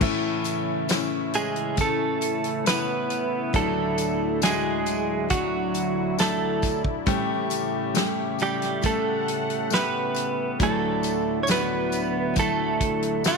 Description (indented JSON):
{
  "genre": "pop ballad",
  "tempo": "68 BPM",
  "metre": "4/4",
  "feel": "straight",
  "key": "A major",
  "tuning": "A4 = 440 Hz",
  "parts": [
    { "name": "warm concert grand piano", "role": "accompaniment", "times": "0.0-13.4 s", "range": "D2 to A4", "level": "-29 LUFS", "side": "left 11 dB", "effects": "none" },
    { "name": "warm analog pad", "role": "sustained chords", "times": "0.0-13.4 s", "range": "C#3 to F#5", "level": "-33 LUFS", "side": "left 12 dB", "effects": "wide subtle chorus" },
    { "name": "picked steel-string acoustic guitar", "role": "arpeggios", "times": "0.0-13.4 s", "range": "A2 to E4", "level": "-31 LUFS", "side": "right 12 dB", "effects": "none" },
    { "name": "natural country drum kit", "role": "drums", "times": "0.0-13.4 s", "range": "crash cymbal, hi-hat, kick drum, snare drum", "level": "-27 LUFS", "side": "equal", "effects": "none" },
    { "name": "tambourine", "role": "percussion", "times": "0.4-13.4 s", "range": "none", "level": "-38 LUFS", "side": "left 15 dB", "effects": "none" },
    { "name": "direct-recorded clean electric guitar", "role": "melody", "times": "1.4-13.4 s", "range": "F#3 to C#5", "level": "-25 LUFS", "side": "right 4 dB", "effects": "none" }
  ],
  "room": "moderate echo chamber reverb, RT60 2.0 s, studio ambience",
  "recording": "1960s-style stereo with parts hard left and right",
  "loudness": "-22 LUFS",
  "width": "side -4 dB against mid",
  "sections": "0.0-13.4 A section",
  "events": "none",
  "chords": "0.0 A; 3.5 Dadd9; 7.1 A7; 10.6 Dadd9",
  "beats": "| 0.01 0.90 1.78 2.66 | 3.54 4.42 5.31 6.19 | 7.07 7.96 8.84 9.72 | 10.60 11.48 12.37 13.25"
}